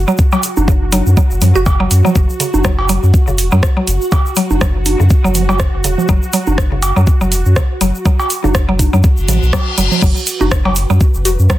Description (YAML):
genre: minimal techno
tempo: 122 BPM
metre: 4/4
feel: swing 56% on 16ths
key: unclear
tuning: A4 = 440 Hz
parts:
  - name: saturated sub bass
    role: bass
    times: 0.0-11.5 s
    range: E1 to F#2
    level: -13 LUFS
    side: equal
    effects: sidechain pumping
  - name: swarming drone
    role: texture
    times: 0.0-11.6 s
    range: F#4 to B4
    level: -24 LUFS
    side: right 2 dB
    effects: built-in reverb, sidechain pumping
  - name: mallet-like synth pluck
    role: riff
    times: 0.1-11.5 s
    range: C#3 to F#4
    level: -18 LUFS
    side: equal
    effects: chorus, sidechain pumping, tape echo
  - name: egg shaker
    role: percussion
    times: 0.1-11.6 s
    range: none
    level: -27 LUFS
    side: right 1 dB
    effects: none
  - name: electronic kick drum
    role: drums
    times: 0.2-11.6 s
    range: none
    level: -13 LUFS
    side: equal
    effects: overdrive, small room ambience
  - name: cowbell and congas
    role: percussion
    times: 0.3-10.7 s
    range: none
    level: -20 LUFS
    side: right 4 dB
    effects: small room ambience, dub echo
  - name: garage drum kit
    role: drums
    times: 0.4-11.6 s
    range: crash cymbal, hi-hat, rim click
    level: -19 LUFS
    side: right 1 dB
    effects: overdrive, small room ambience
  - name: reverse cymbal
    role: sound effects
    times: 9.2-10.0 s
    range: none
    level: -20 LUFS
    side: left 6 dB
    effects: none
room: light reverb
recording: dense, heavily limited modern master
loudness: -10 LUFS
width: side -14 dB against mid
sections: 0.0-11.6 A section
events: reverse cymbal 9.2-10.0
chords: 0.0 F#5